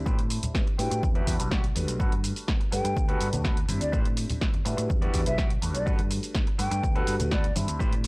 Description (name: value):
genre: filtered disco house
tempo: 124 BPM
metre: 4/4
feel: straight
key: G major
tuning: A4 = 442 Hz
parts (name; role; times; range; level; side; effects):
- clear grand piano; accompaniment; 0.0-8.1 s; G3 to B5; -34 LUFS; equal; phaser, sidechain pumping, low-pass filter
- fingered electric bass; bass; 0.0-8.1 s; B1 to A2; -30 LUFS; equal; sidechain pumping, low-pass filter
- electric guitar at the edge of break-up; riff; 0.1-8.1 s; F#4 to D5; -37 LUFS; equal; sidechain pumping, low-pass filter
- electronic kick drum; drums; 0.1-7.9 s; none; -26 LUFS; equal; none
- punchy analog drum machine; drums; 0.1-8.1 s; hi-hat, shaker, snare drum; -34 LUFS; equal; sidechain pumping on hats, sidechain pumping on cymbals, sidechain pumping on perc
- maracas and congas; percussion; 0.1-8.1 s; none; -34 LUFS; equal; sidechain pumping on perc, low-pass filter on perc
- breathy mellow silver concert flute; melody; 0.8-7.5 s; D5 to G5; -33 LUFS; equal; sidechain pumping, low-pass filter
room: digital ambience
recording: dry, gritty hardware recording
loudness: -24 LUFS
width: side -26 dB against mid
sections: 0.0-8.1 A section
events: filter sweep 0.0-8.1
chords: 0.1 Am11; 1.0 Em9; 2.0 Gmaj9; 3.9 Am11; 4.9 Em9; 5.9 Gmaj9